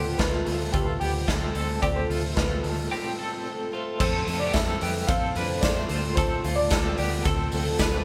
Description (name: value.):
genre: jangly indie pop.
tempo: 110 BPM.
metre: 4/4.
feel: straight.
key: D dorian.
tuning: A4 = 440 Hz.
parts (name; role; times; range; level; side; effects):
warm upright piano; melody; 0.0-8.0 s; G4 to F5; -34 LUFS; equal; none.
picked twelve-string acoustic guitar; accompaniment; 0.0-8.0 s; D3 to A4; -34 LUFS; equal; none.
twelve-string electric guitar; arpeggios; 0.0-8.0 s; A3 to C5; -34 LUFS; equal; tremolo.
vintage muted picked electric bass; bass; 0.0-8.0 s; D2 to F2; -32 LUFS; equal; none.
raw garage drum kit; drums; 0.2-7.9 s; crash cymbal, hi-hat, kick drum, ride cymbal, snare drum; -30 LUFS; equal; none.
tambourine; percussion; 4.0-7.9 s; none; -46 LUFS; equal; none.
room: moderate studio ambience, RT60 0.5 s.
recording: band playing live in one room.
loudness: -26 LUFS.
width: mono.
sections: 0.0-4.0 A section; 4.0-8.0 B section.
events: break 2.9-4.0.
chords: 0.0 Dm7; 4.0 Fmaj7; 5.9 Dm7.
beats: 0.19 0.74 1.28 | 1.83 2.37 2.91 3.46 | 4.00 4.54 5.08 5.63 | 6.17 6.71 7.25 7.80.